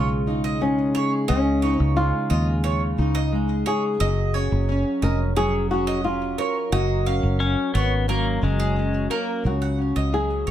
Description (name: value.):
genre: acoustic pop.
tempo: 88 BPM.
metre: 4/4.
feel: straight.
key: F# major.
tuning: A4 = 440 Hz.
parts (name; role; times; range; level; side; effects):
flamenco guitar; melody; 0.0-10.5 s; C#4 to A#4; -26 LUFS; left 2 dB; plate reverb, ping-pong delay.
fingerpicked plugged-in steel-string acoustic guitar; accompaniment; 0.0-10.5 s; C#3 to A#4; -26 LUFS; equal; double-tracked left and right.
bowl-back mandolin; arpeggios; 0.0-10.5 s; G#4 to F#5; -31 LUFS; right 6 dB; plate reverb, ping-pong delay.
fingered electric bass; bass; 0.0-10.5 s; E#1 to D#2; -23 LUFS; equal; none.
pedal steel guitar; second line; 7.4-9.4 s; G#3 to C#4; -25 LUFS; left 4 dB; plate reverb.
room: moderate studio ambience, RT60 0.5 s.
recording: none.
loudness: -20 LUFS.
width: side -11 dB against mid.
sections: 0.0-9.4 A section; 9.4-10.5 B section.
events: none.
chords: 0.0 C#add9; 4.0 F#maj7; 9.4 C#sus4.